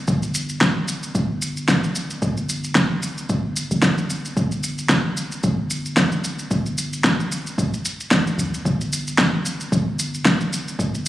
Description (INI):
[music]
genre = organic downtempo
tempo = 112 BPM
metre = 4/4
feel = swing 55% on 16ths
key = unclear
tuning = A4 = 441 Hz
[part]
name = woody FM bass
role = bass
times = 0.1-11.1 s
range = D1 to G1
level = -26 LUFS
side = equal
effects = tube saturation
[part]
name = electronic kick drum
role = drums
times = 0.1-10.9 s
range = none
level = -26 LUFS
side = equal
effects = studio reverb
[part]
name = electronic shaker and snare drum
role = drums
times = 0.1-11.1 s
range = none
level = -21 LUFS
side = equal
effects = studio reverb
[sound]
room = wet concert hall reverb, RT60 2.0 s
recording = recorded on a phone in the room, club reverb, compression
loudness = -19 LUFS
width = side -14 dB against mid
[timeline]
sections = 0.0-11.1 A section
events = none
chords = none